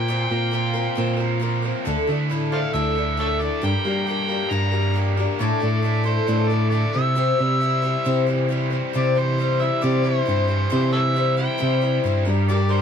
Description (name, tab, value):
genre	rock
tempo	135 BPM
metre	4/4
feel	straight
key	unclear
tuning	A4 = 440 Hz
part	overdriven harmonica	melody	0.0-12.8 s	A4 to Bb5	-26 LUFS	right 1 dB	none
part	picked twelve-string acoustic guitar	accompaniment	0.0-12.8 s	A2 to C5	-25 LUFS	left 5 dB	none
part	overdriven electric guitar	riff	0.0-12.8 s	G2 to G4	-28 LUFS	right 2 dB	spring reverb
part	tine electric piano	bass	0.0-12.8 s	D2 to G3	-22 LUFS	right 1 dB	phaser
part	tonewheel organ	sustained chords	12.5-12.8 s	G3 to D5	-28 LUFS	left 4 dB	chorus vibrato, slow rotary speaker
room	moderate small room reverb, RT60 0.5 s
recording	band playing live in one room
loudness	-19 LUFS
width	side -7 dB against mid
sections	0.0-8.9 A section; 8.9-12.8 B section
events	none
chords	0.0 Bbsus2; 1.9 Dsus2; 3.6 Gm; 5.4 Dsus2/A; 6.9 C; 12.3 Gm